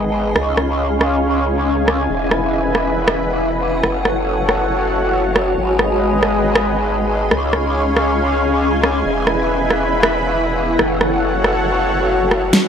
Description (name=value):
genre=heavy wobble dubstep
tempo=138 BPM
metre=4/4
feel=half-time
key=unclear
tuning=A4 = 440 Hz
part: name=supersaw pad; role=sustained chords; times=0.0-12.7 s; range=G#3 to B5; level=-19 LUFS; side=equal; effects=low-pass filter
part: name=growl bass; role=bass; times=0.0-12.5 s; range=E1 to C#2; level=-20 LUFS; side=equal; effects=chorus, overdrive
part: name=impact and riser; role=sound effects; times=0.0-0.4, 12.5-12.7 s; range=none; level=barely audible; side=none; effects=none
part: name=granular cloud pad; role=texture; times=0.0-12.7 s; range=C#4 to B5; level=-20 LUFS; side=left 1 dB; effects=built-in reverb
part: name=dubstep drum kit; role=drums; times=0.4-12.6 s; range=hi-hat, rim click, snare drum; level=-17 LUFS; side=right 1 dB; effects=none
room=moderate plate reverb, RT60 1.3 s, digital ambience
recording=none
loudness=-14 LUFS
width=side -7 dB against mid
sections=0.0-12.5 A section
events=impact 0.0-0.4; filter sweep on supersaw synth 0.0-12.5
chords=0.4 C#; 2.1 E; 3.8 F#m; 5.6 G#m; 7.3 C#; 9.1 E; 10.8 F#m